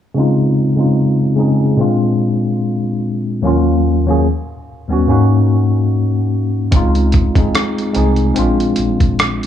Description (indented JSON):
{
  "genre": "lo-fi hip hop",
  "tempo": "73 BPM",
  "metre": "4/4",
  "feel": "swing 56% on 16ths",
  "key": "Db major",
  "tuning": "A4 = 440 Hz",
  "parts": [
    { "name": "tine electric piano", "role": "accompaniment", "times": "0.1-9.5 s", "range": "Eb2 to Ab4", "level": "-13 LUFS", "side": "left 1 dB", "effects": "overdrive, fast stereo tremolo, cassette tape, low-pass filter" },
    { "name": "upright bass", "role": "bass", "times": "6.7-9.4 s", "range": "Bb1 to Db2", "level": "-17 LUFS", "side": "equal", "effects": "none" },
    { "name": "lo-fi sampler-style drum kit", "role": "drums", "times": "6.7-9.5 s", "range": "hi-hat, kick drum, rim click", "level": "-15 LUFS", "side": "equal", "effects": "none" }
  ],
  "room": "light reverb",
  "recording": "small room ambience",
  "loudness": "-12 LUFS",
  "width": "side -10 dB against mid",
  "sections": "0.1-9.5 A section",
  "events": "filter sweep on tine electric piano 0.1-9.5",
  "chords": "0.1 Dbmaj7; 1.8 Bb7; 3.4 Ebm9; 4.3 Eb7alt; 5.1 Ab9sus4; 6.7 Dbmaj7; 8.4 Bb7",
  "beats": "| 0.15 0.97 1.79 2.61 | 3.44 4.26 5.08 5.90 | 6.72 7.54 8.37 9.19"
}